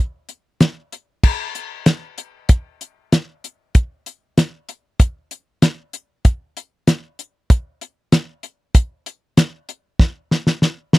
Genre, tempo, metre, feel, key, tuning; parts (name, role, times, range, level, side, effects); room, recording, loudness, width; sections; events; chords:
rock; 96 BPM; 4/4; straight
damped 70s drum kit; drums; 0.3-11.0 s; crash cymbal, hi-hat, kick drum, snare drum; -13 LUFS; equal
light reverb; dry, close 1970s-style studio recording; -17 LUFS; side -19 dB against mid
0.0-1.2 A section; 1.2-11.0 B section
drum fill 10.0-11.0